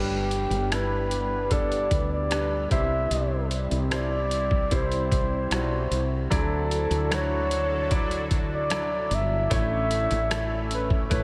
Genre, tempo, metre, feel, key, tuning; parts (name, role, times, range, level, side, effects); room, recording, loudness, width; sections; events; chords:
pop ballad; 75 BPM; 4/4; straight; D major; A4 = 439 Hz
breathy flugelhorn; melody; 0.0-11.2 s; G4 to E5; -30 LUFS; equal
clear concert grand piano; accompaniment; 0.0-11.2 s; G2 to D5; -35 LUFS; equal
sweeping resonant pad; sustained chords; 0.0-11.2 s; D3 to A4; -37 LUFS; equal; chorus
woody fretless electric bass; bass; 0.0-11.2 s; G1 to D2; -31 LUFS; equal
boom bap sampler-style drum kit; drums; 0.3-11.2 s; hi-hat, kick drum, rim click; -31 LUFS; equal
moderate huge ambient reverb, RT60 8.7 s; dreamy mix soaked in reverb; -26 LUFS; mono
0.0-11.2 A section
0.0 G; 2.7 C; 6.3 Dadd9; 9.5 A